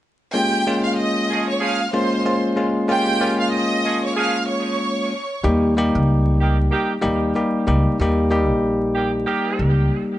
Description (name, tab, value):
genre	hip hop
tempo	94 BPM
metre	4/4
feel	swing 60% on 16ths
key	Bb dorian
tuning	A4 = 442 Hz
part	warm studio violin section	melody	0.3-5.4 s	G4 to F6	-22 LUFS	right 2 dB	tape echo
part	bell-like tine electric piano	accompaniment	0.3-10.2 s	G3 to G4	-20 LUFS	left 1 dB	cassette tape
part	clear saxophone section	stabs	1.3-9.7 s	Eb3 to Ab4	-26 LUFS	right 4 dB	tape echo
part	upright bass	bass	5.4-9.9 s	Bb1 to Eb2	-19 LUFS	equal	none
room	light reverb, studio reverb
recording	vinyl crackle, nothing above 10.7 kHz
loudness	-17 LUFS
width	side -14 dB against mid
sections	0.3-10.2 A section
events	none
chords	0.3 Bbm7; 5.4 Eb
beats	| 0.34 0.97 1.61 2.25 | 2.89 3.53 4.17 4.80 | 5.44 6.08 6.72 7.36 | 7.99 8.63 9.27 9.91